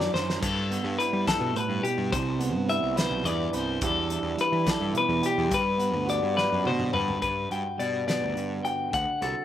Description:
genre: math rock and midwest emo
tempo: 70 BPM (dotted quarters)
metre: 6/8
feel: straight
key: G major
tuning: A4 = 440 Hz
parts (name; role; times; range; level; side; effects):
- electric guitar at the edge of break-up; accompaniment; 0.0-9.4 s; G2 to D5; -30 LUFS; right 5 dB; slapback echo
- clean electric guitar; arpeggios; 0.0-9.4 s; G4 to G5; -27 LUFS; left 4 dB; slapback echo
- fuzz picked electric bass; bass; 0.0-9.3 s; B1 to G3; -31 LUFS; equal; overdrive
- loose indie drum kit; drums; 0.0-9.4 s; crash cymbal, hi-hat, kick drum, snare drum, toms; -32 LUFS; equal; none
room: little or no reverb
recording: none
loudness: -24 LUFS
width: side -11 dB against mid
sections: 0.0-7.2 A section; 7.2-9.4 B section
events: drum fill 0.0-0.4, 6.4-7.2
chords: 0.4 G69; 2.1 Cmaj7; 3.8 Em7; 5.5 Gmaj7; 8.9 D7

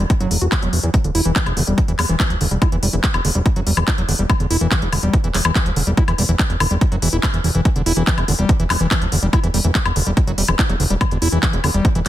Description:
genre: psychedelic trance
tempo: 143 BPM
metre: 4/4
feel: straight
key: E minor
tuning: A4 = 440 Hz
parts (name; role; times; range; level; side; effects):
- overdriven acid bass; riff; 0.0-12.1 s; D3 to F#4; -22 LUFS; equal; auto-pan, sidechain pumping, digital delay
- fat analog bass; bass; 0.0-12.1 s; D1 to E2; -19 LUFS; equal; none
- electronic kick drum; drums; 0.1-11.9 s; none; -18 LUFS; equal; overdrive, small room ambience
- techno drum kit; drums; 0.1-12.1 s; handclaps, hi-hat, woodblock; -22 LUFS; left 2 dB; small room ambience
room: little or no reverb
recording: dense, heavily limited modern master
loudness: -15 LUFS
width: side -13 dB against mid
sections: 0.0-12.1 A section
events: none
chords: 0.0 E5

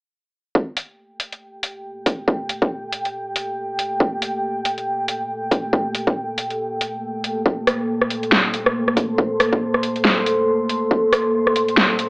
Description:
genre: deep dubstep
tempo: 139 BPM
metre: 4/4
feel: swing 58% on 16ths, half-time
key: G minor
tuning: A4 = 441 Hz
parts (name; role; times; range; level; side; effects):
- deep dark ambient pad; sustained chords; 1.7-12.1 s; Bb3 to C6; -22 LUFS; equal; chorus, built-in reverb
- electronic kick drum; drums; 0.6-11.0 s; none; -18 LUFS; equal; high-pass filter on kick
- dubstep drum kit; drums; 0.8-12.1 s; hi-hat, rim click, snare drum; -18 LUFS; equal; none
room: moderate digital room reverb, RT60 0.9 s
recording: dry, gritty hardware recording, AM radio sound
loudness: -18 LUFS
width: side -32 dB against mid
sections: 0.6-12.1 A section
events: none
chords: 0.6 Gmadd9

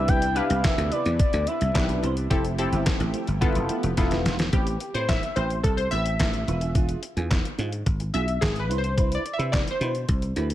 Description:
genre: early-eighties boogie funk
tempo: 108 BPM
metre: 4/4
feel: straight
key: A minor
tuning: A4 = 442 Hz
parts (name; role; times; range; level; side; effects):
- expressive synth lead; melody; 0.0-2.0 s; D5 to G5; -27 LUFS; left 1 dB; chorus, slapback echo
- funky polysynth comp; accompaniment; 0.0-10.2 s; B3 to E5; -28 LUFS; left 1 dB; chorus
- lush unison pad; sustained chords; 0.0-4.5 s; C3 to G4; -36 LUFS; equal; none
- dry thumbed slap bass; bass; 0.0-10.5 s; E1 to C3; -26 LUFS; equal; none
- semi-hollow electric guitar; riff; 0.1-10.5 s; F3 to C5; -34 LUFS; right 5 dB; ensemble chorus
- detuned 8-bit digital drum machine; drums; 0.1-10.5 s; handclaps, hi-hat, kick drum, snare drum; -25 LUFS; equal; gated reverb
room: little or no reverb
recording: none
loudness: -22 LUFS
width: side -13 dB against mid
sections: 0.0-4.5 A section; 4.5-10.5 B section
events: drum fill 4.0-4.5; analog polysynth solo 4.5-10.5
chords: 0.0 Cmaj9; 2.3 Fmaj9; 3.4 G13; 4.5 Am9; 6.5 E7b9; 8.7 Cmaj9

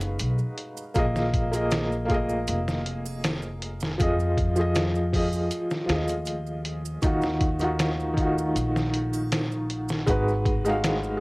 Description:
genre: trip hop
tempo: 79 BPM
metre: 4/4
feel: straight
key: Eb minor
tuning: A4 = 440 Hz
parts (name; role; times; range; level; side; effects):
- felt-muted upright piano; accompaniment; 0.0-11.2 s; Eb3 to F5; -26 LUFS; equal; tremolo, cassette tape, tape echo
- upright bass; bass; 0.0-11.2 s; F1 to F2; -29 LUFS; equal; none
- trip hop sampler-style drum kit; drums; 0.0-11.0 s; hi-hat, kick drum, snare drum; -27 LUFS; equal; cassette tape
- maracas and triangle; percussion; 0.0-11.2 s; none; -44 LUFS; right 9 dB; none
room: light reverb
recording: home recording on cassette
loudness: -23 LUFS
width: side -25 dB against mid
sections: 0.0-11.2 A section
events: none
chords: 0.0 Abm7; 1.0 Bb7sus4; 4.0 Fm7; 7.0 Ebmadd9; 10.1 Abm7

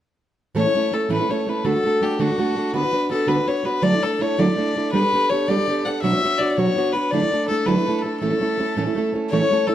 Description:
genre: celtic folk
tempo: 110 BPM (dotted quarters)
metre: 6/8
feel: straight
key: A mixolydian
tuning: A4 = 440 Hz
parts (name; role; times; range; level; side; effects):
- fingerpicked plugged-in steel-string acoustic guitar; accompaniment; 0.5-9.7 s; A2 to C#5; -21 LUFS; right 3 dB; none
- clear fiddle; melody; 0.6-9.7 s; F#4 to F#5; -22 LUFS; left 4 dB; plate reverb
- baroque flute; second line; 9.3-9.7 s; A4 to C#5; -24 LUFS; left 8 dB; none
room: wet studio reverb, RT60 0.6 s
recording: dark, warm production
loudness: -18 LUFS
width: side -11 dB against mid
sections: 0.6-9.3 A section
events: none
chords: 0.6 A; 1.6 D; 2.7 Bm/D; 3.8 Dadd9; 4.9 Gadd9; 6.0 Bmadd9; 7.1 Dadd9; 8.2 A

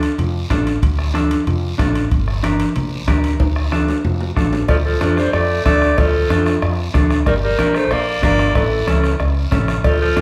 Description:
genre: latin, cumbia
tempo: 186 BPM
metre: 4/4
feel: straight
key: D minor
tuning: A4 = 440 Hz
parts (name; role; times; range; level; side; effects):
- clean electric guitar; accompaniment; 0.0-10.2 s; C#4 to Bb4; -24 LUFS; equal; spring reverb
- woody fretless electric bass; bass; 0.0-10.2 s; G1 to F2; -22 LUFS; equal; none
- guiro; percussion; 0.0-10.2 s; none; -37 LUFS; equal; none
- timbales and cowbell; percussion; 0.0-10.2 s; none; -31 LUFS; equal; none
- congas; percussion; 0.2-10.2 s; none; -28 LUFS; equal; none
- bombo; percussion; 0.5-10.2 s; none; -23 LUFS; equal; none
- warm clarinet; melody; 4.7-10.2 s; A4 to D5; -22 LUFS; equal; none
- bright tenor saxophone; second line; 4.7-10.2 s; E3 to Bb3; -25 LUFS; equal; none
room: moderate large studio reverb, RT60 0.8 s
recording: band playing live in one room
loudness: -17 LUFS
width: mono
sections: 0.0-4.7 A section; 4.7-10.2 B section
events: drum fill 3.4-4.7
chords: 0.0 Dm; 2.1 Gm; 3.4 Dm; 7.3 Gm; 8.6 A

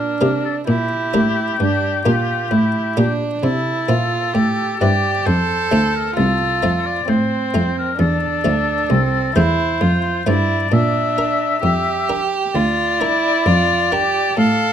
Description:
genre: classical, baroque-style sonata movement with continuo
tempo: 66 BPM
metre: 4/4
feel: straight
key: F major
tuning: A4 = 440 Hz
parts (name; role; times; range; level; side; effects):
- clear oboe; melody; 0.0-14.7 s; G4 to F5; -21 LUFS; left 6 dB; none
- rich violin; second line; 0.0-14.7 s; C4 to A4; -21 LUFS; right 6 dB; none
- buff-stop harpsichord; accompaniment; 0.0-14.7 s; C2 to Bb4; -24 LUFS; left 2 dB; none
- warm cello; bass; 0.0-14.7 s; C2 to C3; -19 LUFS; right 1 dB; none
room: light reverb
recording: close, detailed microphones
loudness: -15 LUFS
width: side -9 dB against mid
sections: 0.0-14.7 A section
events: none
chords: 0.0 Gm; 3.4 C; 5.3 F; 10.7 Bb

